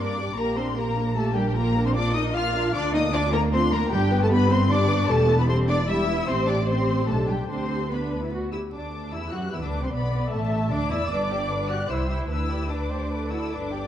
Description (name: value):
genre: quick classical-period movement for string orchestra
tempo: 151 BPM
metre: 3/4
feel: rubato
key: G major from 3.9 s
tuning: A4 = 440 Hz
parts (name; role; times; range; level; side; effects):
- warm symphonic violin section; melody; 0.0-13.9 s; G5 to F#6; -31 LUFS; left 4 dB; none
- warm studio violin section; second line; 0.0-13.9 s; A3 to F5; -30 LUFS; left 2 dB; none
- rich symphonic viola section; accompaniment; 0.0-13.5 s; G3 to E5; -29 LUFS; equal; none
- rich studio double bass section; bass; 0.0-13.9 s; E1 to G2; -26 LUFS; right 1 dB; none
- rich symphonic cello section; bass; 0.0-13.9 s; G3 to F#4; -29 LUFS; right 1 dB; none
room: wet scoring stage reverb, RT60 1.6 s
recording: dark, warm production, vinyl crackle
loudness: -21 LUFS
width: side -10 dB against mid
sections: 0.0-8.7 A section; 8.7-13.9 B section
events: none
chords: 0.4 Gm/Bb; 1.6 Bb; 2.7 Bb/D; 3.9 G; 5.1 Em; 6.3 Am7; 7.1 G/B; 7.5 G/D; 8.3 D; 8.7 G/D; 9.9 D5; 11.1 G; 11.9 C; 12.3 G/D; 13.1 D